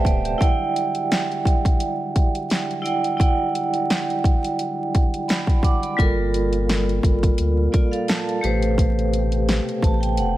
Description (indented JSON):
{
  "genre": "hip hop, boom-bap hip-hop",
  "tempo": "86 BPM",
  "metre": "4/4",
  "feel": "swing 55% on 16ths",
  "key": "E minor",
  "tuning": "A4 = 441 Hz",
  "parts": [
    { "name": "vibraphone with hard mallets", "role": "accompaniment", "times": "0.0-10.4 s", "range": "G3 to D6", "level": "-23 LUFS", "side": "right 2 dB", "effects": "high-pass filter, low-pass filter" },
    { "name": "mellow tonewheel organ", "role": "sustained chords", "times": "0.0-10.4 s", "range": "Bb2 to G4", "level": "-32 LUFS", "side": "equal", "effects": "chorus vibrato, wide subtle chorus, high-pass filter, low-pass filter" },
    { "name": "house drum kit", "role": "drums", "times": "0.0-10.4 s", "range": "hi-hat, kick drum, snare drum", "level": "-20 LUFS", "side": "equal", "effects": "none" },
    { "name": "warm sub bass", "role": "bass", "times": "0.1-0.3, 6.0-10.4 s", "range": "D1 to D2", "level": "-23 LUFS", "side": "equal", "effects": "none" }
  ],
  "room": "little or no reverb",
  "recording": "vinyl crackle",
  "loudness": "-18 LUFS",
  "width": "side -15 dB against mid",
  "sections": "0.0-10.4 A section",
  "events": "kick muted 10.2",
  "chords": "0.4 Em9; 6.0 Gm9; 8.4 Am9",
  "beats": "| 0.41 1.10 1.80 2.50 | 3.20 3.90 4.59 5.29 | 5.99 6.69 7.38 8.08 | 8.78 9.48 10.18"
}